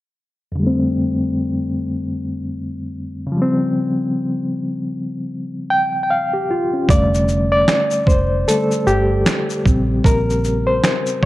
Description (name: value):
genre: lo-fi hip hop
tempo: 76 BPM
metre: 4/4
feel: swing 58% on 16ths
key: F major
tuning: A4 = 437 Hz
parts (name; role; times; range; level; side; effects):
- bright reed electric piano; accompaniment; 0.5-11.3 s; F2 to G5; -18 LUFS; left 1 dB; fast tremolo, low-pass filter
- vintage muted fingered electric bass; bass; 6.9-11.3 s; F1 to Bb1; -19 LUFS; right 1 dB; none
- boom bap sampler-style drum kit; drums; 6.9-11.3 s; finger snaps, hi-hat, kick drum, shaker, snare drum; -17 LUFS; right 1 dB; none
room: moderate spring reverb, RT60 2.4 s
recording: none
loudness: -16 LUFS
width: side -16 dB against mid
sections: 0.6-6.9 A section; 6.9-11.3 B section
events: filter sweep on reed electric piano 0.6-6.9; reed electric piano solo 6.9-11.3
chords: 0.6 F69; 3.3 Dbmaj7#11; 6.9 F69; 9.7 Bbm6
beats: | 0.57 1.36 2.15 2.94 | 3.73 4.52 5.31 6.10 | 6.89 7.68 8.47 9.26 | 10.05 10.84